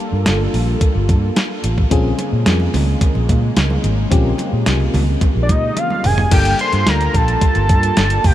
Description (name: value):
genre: early-eighties boogie funk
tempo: 109 BPM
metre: 4/4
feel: straight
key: unclear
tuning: A4 = 442 Hz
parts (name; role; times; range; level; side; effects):
- FM electric piano with tremolo; accompaniment; 0.0-8.3 s; Bb3 to A4; -24 LUFS; left 5 dB; none
- warm analog pad; sustained chords; 0.0-8.3 s; Db3 to A4; -24 LUFS; right 2 dB; chorus
- vintage muted fingered electric bass; bass; 0.1-8.3 s; F1 to Bb2; -17 LUFS; equal; none
- clean 12-bit digital drum machine; drums; 0.3-8.3 s; crash cymbal, hi-hat, kick drum, snare drum, toms; -18 LUFS; equal; none
- congas; percussion; 1.9-6.2 s; none; -28 LUFS; right 3 dB; none
- fat analog lead; melody; 5.4-8.3 s; D5 to C6; -18 LUFS; equal; chorus, diffuse ambient delay
room: light reverb, digital ambience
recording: none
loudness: -13 LUFS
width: side -13 dB against mid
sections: 0.0-6.3 A section; 6.3-8.3 B section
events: drum fill 5.8-6.3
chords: 0.0 Gm9; 1.9 Bbm9; 6.3 Gm9